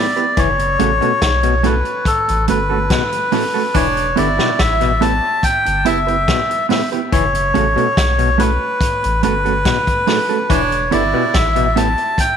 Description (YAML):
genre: roots reggae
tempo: 71 BPM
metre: 4/4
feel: straight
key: unclear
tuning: A4 = 440 Hz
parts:
  - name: melodica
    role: melody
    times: 0.0-12.4 s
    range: A4 to A5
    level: -17 LUFS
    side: left 1 dB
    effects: tape echo
  - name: mellow electric guitar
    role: accompaniment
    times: 0.0-11.9 s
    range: A3 to B4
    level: -22 LUFS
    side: right 10 dB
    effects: spring reverb, tape echo
  - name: overdriven clav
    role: arpeggios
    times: 0.0-11.9 s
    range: A2 to E3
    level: -23 LUFS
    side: left 12 dB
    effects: none
  - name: vintage drum kit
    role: drums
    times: 0.2-12.4 s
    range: hi-hat, kick drum, snare drum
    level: -20 LUFS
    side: equal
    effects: tape echo
  - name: warm sub bass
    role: bass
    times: 0.4-11.9 s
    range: E1 to B1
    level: -20 LUFS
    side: left 1 dB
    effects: none
  - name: edgy tenor saxophone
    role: second line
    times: 3.7-11.7 s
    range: D4 to E4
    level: -24 LUFS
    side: right 11 dB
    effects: tape echo
room: light reverb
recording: 1960s-style stereo with parts hard left and right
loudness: -13 LUFS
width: side -8 dB against mid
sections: 0.0-12.4 A section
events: none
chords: 0.4 F#m; 3.7 Em; 7.1 F#m; 10.5 Em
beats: | 0.37 1.21 2.06 2.90 | 3.75 4.59 5.43 6.28 | 7.12 7.97 8.81 9.65 | 10.50 11.34 12.19